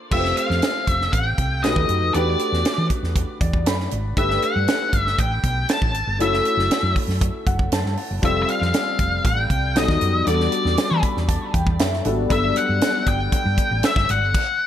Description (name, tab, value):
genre	polished 1980s jazz-funk pop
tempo	118 BPM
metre	4/4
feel	straight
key	unclear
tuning	A4 = 440 Hz
part	warm grand piano	accompaniment	0.0-14.4 s	F#3 to B5	-25 LUFS	left 2 dB	analog chorus
part	octave-fuzz lead guitar	melody	0.1-14.7 s	D5 to A5	-23 LUFS	left 2 dB	distortion
part	hollow-body short-scale fingered electric bass	bass	0.1-14.3 s	F1 to E3	-23 LUFS	equal	none
part	tight funk drum kit	drums	0.1-14.5 s	crash cymbal, hi-hat, kick drum, snare drum	-22 LUFS	right 1 dB	gated reverb
room	light reverb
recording	none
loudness	-18 LUFS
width	side -10 dB against mid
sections	0.1-14.7 A section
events	grand piano fill 3.2-4.2, 7.2-8.2, 10.8-12.3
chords	0.1 Fadd9; 1.6 B7b13; 2.1 Em11; 4.2 Gmaj9; 6.2 F#m7; 8.2 Fadd9; 9.8 B7b13; 10.3 Em11; 12.3 Gmaj9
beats	| 0.12 0.62 1.13 1.64 | 2.14 2.65 3.16 3.66 | 4.17 4.68 5.18 5.69 | 6.20 6.71 7.22 7.72 | 8.23 8.74 9.25 9.76 | 10.27 10.78 11.29 11.80 | 12.31 12.82 13.33 13.84 | 14.35